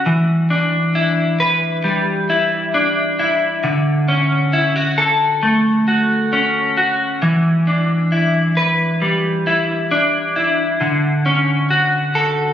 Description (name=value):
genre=dream pop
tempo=67 BPM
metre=4/4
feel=straight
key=unclear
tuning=A4 = 441 Hz
part: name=semi-hollow electric guitar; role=solo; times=0.0-12.5 s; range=D3 to B4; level=-14 LUFS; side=equal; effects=lush chorus, ping-pong delay
room=moderate plate reverb, RT60 3.5 s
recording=recorded on a phone in the room, studio reverb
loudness=-14 LUFS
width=side -10 dB against mid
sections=0.0-12.5 A section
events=none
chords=0.1 Em7; 3.6 Dmaj7; 7.2 Em7; 10.8 Dmaj7